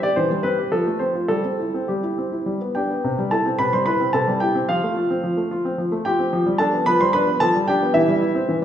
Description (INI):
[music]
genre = classical-period piano sonatina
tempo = 109 BPM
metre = 3/4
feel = rubato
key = C major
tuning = A4 = 440 Hz
[part]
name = warm grand piano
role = solo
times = 0.0-8.6 s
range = C3 to C6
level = -18 LUFS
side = equal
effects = none
[sound]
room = wet recital hall reverb, RT60 1.7 s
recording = heard from further back in the room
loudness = -18 LUFS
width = side -10 dB against mid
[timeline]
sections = 0.0-3.0 A section; 3.0-8.6 B section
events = none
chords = 0.0 C/E; 0.7 F; 1.3 C/G; 2.5 G; 3.0 C; 4.7 F; 6.3 G7/F; 7.9 C/E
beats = 0.16 0.72 | 1.29 1.88 2.46 | 3.04 3.59 4.14 | 4.69 5.24 5.79 | 6.33 6.87 7.41 | 7.95 8.48